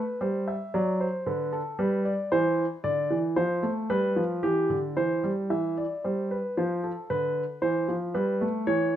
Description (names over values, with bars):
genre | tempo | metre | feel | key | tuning
classical, baroque-style two-part invention for grand piano | 114 BPM | 3/4 | straight | C major | A4 = 441 Hz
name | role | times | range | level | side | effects
warm grand piano | solo | 0.0-9.0 s | D3 to E5 | -25 LUFS | equal | none
room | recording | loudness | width
moderate stone room reverb, RT60 1.0 s | close, detailed microphones | -25 LUFS | side -10 dB against mid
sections
0.0-5.5 A section; 5.5-9.0 B section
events
none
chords
0.2 C/G; 0.7 D7/F#; 1.8 G; 2.3 C/E; 3.4 F; 3.9 G7; 5.0 C/E; 6.6 F; 7.1 Bdim/D; 8.1 Gadd9